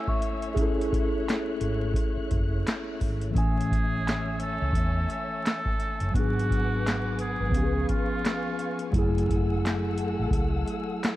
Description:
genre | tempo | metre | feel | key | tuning
lo-fi hip hop | 86 BPM | 4/4 | swing 61% on 16ths | A major | A4 = 440 Hz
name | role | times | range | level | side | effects
small celesta | second line | 0.0-1.1 s | E5 to C#6 | -37 LUFS | left 1 dB | low-pass filter, tape echo
mellow tine electric piano | accompaniment | 0.0-11.2 s | E3 to G#5 | -30 LUFS | left 1 dB | medium stereo tremolo, cassette tape, low-pass filter
warm symphonic string section | sustained chords | 0.0-11.2 s | A3 to F#6 | -37 LUFS | left 3 dB | low-pass filter
booming analog drum machine | drums | 0.1-11.2 s | handclaps, hi-hat, kick drum, snare drum | -29 LUFS | equal | vintage 12-bit sampler grit
vintage muted fingered electric bass | bass | 1.6-10.6 s | F#1 to E2 | -28 LUFS | equal | none
trumpet with metal mute | melody | 3.4-8.9 s | E#4 to A4 | -33 LUFS | right 2 dB | low-pass filter
room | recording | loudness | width
light reverb, small room ambience | vinyl crackle | -24 LUFS | side -16 dB against mid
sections
0.0-3.4 A section; 3.4-11.2 B section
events
none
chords
0.0 Amaj7; 6.1 G#m7b5; 7.5 C#7; 8.9 F#m9

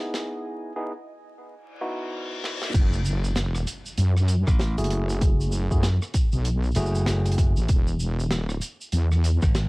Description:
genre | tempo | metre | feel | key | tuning
glitch hop | 97 BPM | 4/4 | swing 60% on 16ths | F# dorian | A4 = 439 Hz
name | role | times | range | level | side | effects
tine electric piano | stabs | 0.0-7.7 s | A3 to G#4 | -32 LUFS | equal | vintage 12-bit sampler grit, sidechain pumping, cassette tape, analog delay
tight metal drum kit | drums | 0.1-9.7 s | crash cymbal, hi-hat, rim click, shaker, snare drum | -32 LUFS | equal | none
reverse cymbal and impact | sound effects | 1.7-5.2 s | none | -36 LUFS | left 2 dB | none
wobble bass | bass | 2.7-9.4 s | E1 to F#2 | -22 LUFS | equal | chorus
electronic kick drum | drums | 2.7-9.5 s | none | -21 LUFS | equal | none
glassy slap bass | bass | 4.5-9.7 s | F#1 to A1 | -24 LUFS | equal | none
room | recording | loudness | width
little or no reverb | home recording on cassette, vinyl crackle, high-pass filter | -22 LUFS | side -25 dB against mid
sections
0.0-2.7 A section; 2.7-9.7 B section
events
build-up 0.0-2.7; drum fill 0.0, 2.4-2.7; filter sweep 0.0-2.7; break 0.3-2.7; reverse cymbal 1.7-2.7; drop 2.7-9.7; impact 2.7-5.2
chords
0.0 Emaj7; 2.7 F#m9; 7.7 E

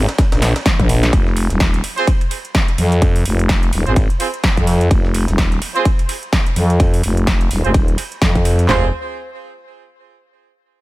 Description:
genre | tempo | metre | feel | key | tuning
bass house | 127 BPM | 4/4 | swing 58% on 16ths | F minor | A4 = 439 Hz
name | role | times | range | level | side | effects
growling FM bass | bass | 0.0-8.9 s | Eb1 to F2 | -16 LUFS | equal | tube saturation, sidechain pumping
big-room dance drum kit | drums | 0.1-8.7 s | hi-hat, snare drum, toms | -22 LUFS | equal | none
breakbeat sampler-style drum kit | drums | 0.1-8.6 s | hi-hat, ride cymbal, snare drum | -31 LUFS | right 2 dB | sidechain pumping on hats, high-pass filter on hats, sidechain pumping on cymbals, high-pass filter on cymbals, high-pass filter on snare
big-room dance drum kit | drums | 0.2-8.8 s | handclaps, kick drum, snare drum, toms | -15 LUFS | equal | none
clear horn section | stabs | 2.0-8.9 s | C4 to C5 | -22 LUFS | right 4 dB | sidechain pumping, low-pass filter, digital delay
room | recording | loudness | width
little or no reverb | none | -13 LUFS | side -19 dB against mid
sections
0.0-1.1 A section; 1.1-8.7 B section; 8.7-10.6 C section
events
drop 0.0-1.1; drum fill 0.7-1.1; filter sweep on FM bass 1.1-8.7; filter sweep on horn section 1.1-8.7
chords
0.0 N.C.; 8.7 Fm

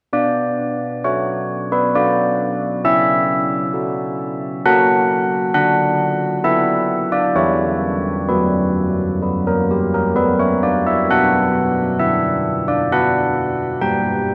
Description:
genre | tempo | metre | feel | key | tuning
classical, tune for church bells | 66 BPM | 3/4 | straight | B minor | A4 = 441 Hz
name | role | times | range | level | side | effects
carillon bells | solo | 0.1-14.3 s | E3 to G5 | -18 LUFS | equal | none
room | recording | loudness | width
wet cathedral reverb, RT60 7.1 s | none | -18 LUFS | mono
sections
0.1-14.3 A section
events
none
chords
0.1 Bm; 2.8 F#7/C#; 5.5 Bm/D; 7.3 C#m7b5/E; 8.3 F#sus4; 10.2 F#; 11.1 Bm; 13.8 N.C.

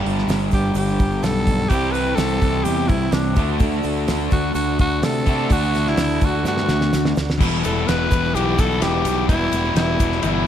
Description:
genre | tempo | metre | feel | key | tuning
classic rock | 127 BPM | 4/4 | straight | E minor | A4 = 440 Hz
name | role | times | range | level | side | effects
picked steel-string acoustic guitar | accompaniment | 0.0-10.5 s | E2 to G4 | -33 LUFS | right 10 dB | none
crunchy overdriven guitar | riff | 0.0-7.2 s | G2 to D4 | -26 LUFS | right 12 dB | none
sludgy distorted guitar | riff | 0.0-10.5 s | E2 to G4 | -24 LUFS | left 10 dB | overdrive
fuzz fingered electric bass | bass | 0.0-10.5 s | E1 to C3 | -24 LUFS | equal | overdrive
damped 70s drum kit | drums | 0.1-10.3 s | crash cymbal, hi-hat, kick drum, ride cymbal, snare drum | -22 LUFS | equal | none
egg shaker | percussion | 0.2-10.3 s | none | -43 LUFS | right 17 dB | none
growling tenor saxophone | melody | 0.5-10.5 s | D4 to B4 | -24 LUFS | equal | none
cranked stack guitar | riff | 7.4-10.5 s | E2 to E3 | -26 LUFS | equal | overdrive
room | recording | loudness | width
studio reverb | none | -17 LUFS | side -10 dB against mid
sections
0.0-7.4 A section; 7.4-10.5 B section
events
drum fill 6.5-7.4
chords
0.0 G; 1.7 C; 3.4 D; 7.4 Em

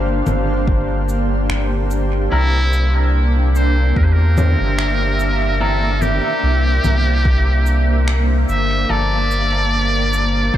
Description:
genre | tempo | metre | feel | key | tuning
ambient dub | 73 BPM | 4/4 | swing 55% on 16ths | unclear | A4 = 438 Hz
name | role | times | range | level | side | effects
granular cloud pad | sustained chords | 0.0-10.6 s | Bb3 to F5 | -22 LUFS | equal | built-in reverb, vintage 12-bit sampler grit
soft dub sub bass | bass | 0.0-10.6 s | G1 to E2 | -16 LUFS | equal | none
electronic congas, shaker and finger snaps | drums | 0.3-10.3 s | none | -26 LUFS | left 1 dB | dub echo
electronic kick drum | drums | 0.7-10.6 s | none | -19 LUFS | equal | none
trumpet with metal mute | melody | 2.3-10.6 s | E4 to E5 | -21 LUFS | equal | dub echo
clean electric guitar | stabs | 2.3-9.2 s | E3 to Bb4 | -29 LUFS | left 2 dB | dub echo
room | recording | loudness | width
light reverb | none | -14 LUFS | side -12 dB against mid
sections
0.0-10.6 A section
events
none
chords
0.0 Gm7; 2.3 C7; 8.9 Gm9

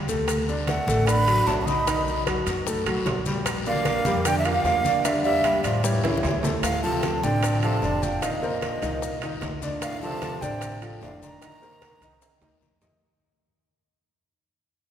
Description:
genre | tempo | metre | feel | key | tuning
Afro-Cuban jazz | 151 BPM | 4/4 | straight | unclear | A4 = 442 Hz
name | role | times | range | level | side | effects
upright bass | bass | 0.0-13.0 s | F1 to F#2 | -29 LUFS | equal | none
warm concert grand piano | accompaniment | 0.1-13.0 s | D3 to Eb5 | -28 LUFS | left 1 dB | none
bongos | percussion | 0.1-13.0 s | none | -36 LUFS | left 5 dB | none
congas | percussion | 0.1-12.9 s | none | -35 LUFS | equal | none
guiro | percussion | 0.1-13.0 s | none | -40 LUFS | left 6 dB | none
maracas | percussion | 0.1-13.0 s | none | -39 LUFS | left 7 dB | none
timbales | percussion | 0.3-12.9 s | none | -33 LUFS | right 4 dB | none
breathy jazz flute | melody | 0.7-12.6 s | C#5 to B5 | -27 LUFS | right 1 dB | none
growling tenor saxophone | second line | 0.7-12.6 s | A2 to Eb4 | -32 LUFS | right 4 dB | none
room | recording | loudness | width
wet church reverb, RT60 3.4 s | recorded in a church or concert hall | -22 LUFS | side -9 dB against mid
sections
0.0-6.6 A section; 6.6-13.0 B section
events
drum fill 6.0-6.6, 12.2-13.0; fade-out 6.6-13.0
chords
0.3 D6; 1.9 B7; 3.5 Bb6; 5.0 A7sus4; 5.8 A7; 6.6 Dm7; 8.2 Cm9; 9.8 Dm7; 11.4 F7sus4

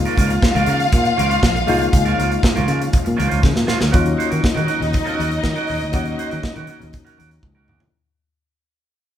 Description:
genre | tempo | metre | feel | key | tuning
disco | 120 BPM | 4/4 | straight | Eb minor | A4 = 445 Hz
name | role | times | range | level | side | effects
rich studio string section | second line | 0.0-7.6 s | Eb4 to F5 | -24 LUFS | left 2 dB | none
barky reed electric piano | accompaniment | 0.0-8.0 s | F3 to Gb4 | -26 LUFS | left 5 dB | overdrive, fast tremolo
mellow French horn section | sustained chords | 0.0-7.9 s | Db3 to F4 | -30 LUFS | right 1 dB | none
fingered electric bass | bass | 0.0-7.9 s | Bb1 to Eb3 | -21 LUFS | equal | none
clean electric guitar | accompaniment | 0.1-7.8 s | Db4 to C5 | -25 LUFS | right 5 dB | none
modern studio drum kit | drums | 0.1-7.9 s | hi-hat, kick drum, snare drum, toms | -19 LUFS | equal | none
congas | percussion | 0.2-7.8 s | none | -32 LUFS | left 4 dB | none
room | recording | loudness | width
moderate large studio reverb, RT60 1.1 s | band playing live in one room | -15 LUFS | side -10 dB against mid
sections
0.0-3.9 A section; 3.9-7.9 B section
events
drum fill 3.4-3.9, 7.4-7.9; fade-out 3.9-7.9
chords
0.0 Db6; 3.9 Ebm7

